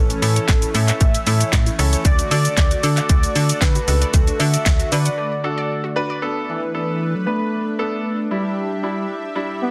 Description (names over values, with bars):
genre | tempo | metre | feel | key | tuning
dance-pop | 115 BPM | 4/4 | straight | B minor | A4 = 439 Hz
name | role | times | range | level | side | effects
warm velvety synth lead | melody | 0.0-9.7 s | E3 to E5 | -27 LUFS | equal | chorus, delay
clear concert grand piano | accompaniment | 0.0-9.7 s | G3 to B4 | -28 LUFS | equal | sidechain pumping
chorused pulse-width pad | sustained chords | 0.0-9.7 s | D3 to E5 | -32 LUFS | equal | sidechain pumping
unison pluck | arpeggios | 0.0-6.2 s | A3 to F#5 | -35 LUFS | equal | none
slap-like FM bass | bass | 0.0-5.1 s | A1 to D3 | -21 LUFS | equal | sidechain pumping
house drum kit | drums | 0.1-5.2 s | handclaps, hi-hat, kick drum, shaker, snare drum | -20 LUFS | equal | none
room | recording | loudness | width
light reverb, digital ambience | dense, heavily limited modern master | -19 LUFS | mono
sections
0.0-6.2 A section; 6.2-9.7 B section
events
break 5.2-6.2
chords
0.0 A; 2.0 D; 6.2 Bm7; 8.3 Em7